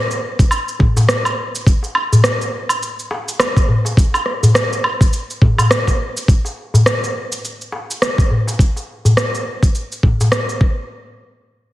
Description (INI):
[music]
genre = downtempo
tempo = 104 BPM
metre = 4/4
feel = swing 59% on 16ths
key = none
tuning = none
[part]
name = electronic cabasa, woodblock and rim click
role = drums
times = 0.1-10.6 s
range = none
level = -18 LUFS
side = equal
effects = none
[part]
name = darbuka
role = percussion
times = 0.1-10.3 s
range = none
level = -16 LUFS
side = left 1 dB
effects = none
[part]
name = electronic kick drum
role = drums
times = 0.4-10.7 s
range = none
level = -13 LUFS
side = equal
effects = none
[sound]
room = moderate recital hall reverb, RT60 1.5 s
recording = heavily compressed radio sound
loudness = -14 LUFS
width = side -16 dB against mid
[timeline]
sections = 0.0-6.3 A section; 6.3-10.9 B section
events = none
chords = none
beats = 0.51 1.09 | 1.67 2.24 2.82 3.40 | 3.97 4.55 5.13 5.70 | 6.28 6.86 7.43 8.01 | 8.59 9.16 9.74 10.32